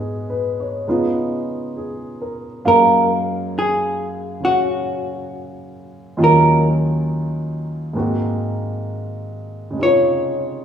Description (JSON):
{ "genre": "jazz", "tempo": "68 BPM", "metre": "4/4", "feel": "swing 67% on 8ths", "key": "Db major", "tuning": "A4 = 440 Hz", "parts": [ { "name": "hollow-body jazz guitar", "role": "melody", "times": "0.0-10.6 s", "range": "Gb4 to Db5", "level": "-17 LUFS", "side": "right 1 dB", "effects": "none" }, { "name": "warm grand piano", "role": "accompaniment", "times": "0.0-10.6 s", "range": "Eb2 to F5", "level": "-20 LUFS", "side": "equal", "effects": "none" } ], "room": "wet recital hall reverb, RT60 1.8 s", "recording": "recorded in a church or concert hall, small room ambience", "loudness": "-16 LUFS", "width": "side -8 dB against mid", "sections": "0.0-10.6 A section", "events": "none", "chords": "0.0 Abm7; 0.9 Db9; 2.6 Gbmaj7; 6.2 Ebm9; 7.9 Ab7; 9.8 Dbmaj9" }